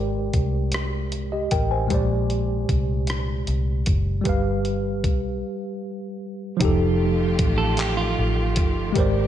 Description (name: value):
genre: slow six-eight R&B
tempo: 51 BPM (dotted quarters)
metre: 6/8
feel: straight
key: unclear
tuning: A4 = 440 Hz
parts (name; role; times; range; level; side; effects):
- tine electric piano; accompaniment; 0.0-9.3 s; Bb2 to Ab5; -25 LUFS; equal; overdrive, fast stereo tremolo
- vintage muted fingered electric bass; bass; 0.0-9.3 s; F1 to C2; -24 LUFS; equal; none
- dusty soul sampler-style drum kit; drums; 0.3-9.1 s; handclaps, hi-hat, kick drum, rim click; -25 LUFS; equal; none
- rich studio string section; sustained chords; 6.6-9.3 s; Eb3 to G4; -31 LUFS; equal; none
- clean electric guitar; second line; 7.6-8.9 s; F4 to A4; -27 LUFS; right 5 dB; spring reverb
room: light reverb, digital ambience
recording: nothing above 10.4 kHz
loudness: -20 LUFS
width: side -11 dB against mid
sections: 0.0-6.6 A section; 6.6-9.3 B section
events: break 5.4-6.6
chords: 0.0 Abmaj9#11; 1.9 Bb13; 4.3 G7; 6.6 F9